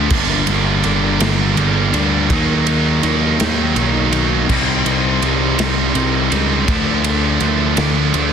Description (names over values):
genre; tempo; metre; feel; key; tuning
quiet-loud alternative rock; 55 BPM (dotted quarters); 6/8; straight; C dorian; A4 = 440 Hz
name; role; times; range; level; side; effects
heavy high-gain guitar; riff; 0.0-8.3 s; G2 to Eb4; -19 LUFS; right 12 dB; distortion
sludgy distorted guitar; riff; 0.0-8.3 s; G2 to Eb4; -21 LUFS; left 10 dB; overdrive
sludgy distorted guitar; riff; 0.0-8.3 s; G2 to Eb4; -23 LUFS; equal; overdrive
fuzz picked electric bass; bass; 0.0-8.3 s; G1 to Eb2; -19 LUFS; equal; overdrive
big rock drum kit; drums; 0.1-8.3 s; crash cymbal, kick drum, ride cymbal, snare drum; -21 LUFS; right 2 dB; none
room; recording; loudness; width
light reverb, small room ambience; dense, heavily limited modern master; -13 LUFS; side -7 dB against mid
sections
0.0-8.3 A section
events
none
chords
0.1 Gm; 2.3 Ebm; 4.5 Cm; 6.7 Dm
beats
| 0.11 1.20 | 2.30 3.39 | 4.49 5.58 | 6.68 7.77